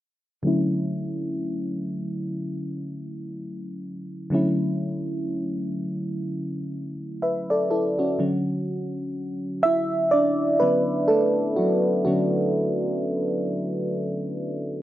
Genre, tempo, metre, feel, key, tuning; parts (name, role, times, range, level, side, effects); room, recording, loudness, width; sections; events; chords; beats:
R&B; 62 BPM; 4/4; swing 58% on 16ths; D major; A4 = 439 Hz
mellow FM electric piano; solo; 0.4-14.8 s; D3 to E5; -23 LUFS; equal; chorus, low-pass filter
moderate studio reverb, RT60 0.6 s; worn, warbling old tape, cassette tape, warbly pitch drift; -22 LUFS; side -13 dB against mid
0.4-8.2 A section; 8.2-14.8 B section
filter sweep on FM electric piano 0.4-8.2; FM electric piano solo 8.2-14.8
0.4 Dmaj7
| 0.44 1.41 2.38 3.34 | 4.31 5.28 6.25 7.21 | 8.18 9.15 10.12 11.09 | 12.05 13.02 13.99